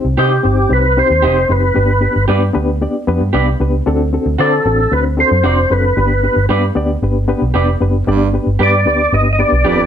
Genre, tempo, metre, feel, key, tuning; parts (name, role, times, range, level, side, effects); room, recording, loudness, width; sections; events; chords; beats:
soul; 114 BPM; 4/4; straight; A4 = 440 Hz
reed electric piano; accompaniment; 0.0-9.9 s; B3 to D5; -18 LUFS; left 3 dB; tremolo
vintage muted picked electric bass; bass; 0.0-9.9 s; Eb1 to D3; -15 LUFS; equal
overdriven tonewheel organ; melody; 0.2-9.9 s; G4 to Eb5; -14 LUFS; equal; chorus vibrato, slow rotary speaker
electric guitar through a small old amp; stabs; 0.2-9.8 s; F#4 to Eb5; -19 LUFS; right 5 dB
breathy baritone saxophone; riff; 8.1-9.9 s; F2 to G2; -18 LUFS; right 6 dB
light reverb; -11 LUFS; side -9 dB against mid
0.0-9.9 A section
0.0 Cm; 1.8 G; 3.9 D7; 6.0 G
0.18 0.70 1.23 | 1.76 2.29 2.81 3.34 | 3.86 4.39 4.92 5.44 | 5.97 6.50 7.02 7.55 | 8.07 8.60 9.12 9.65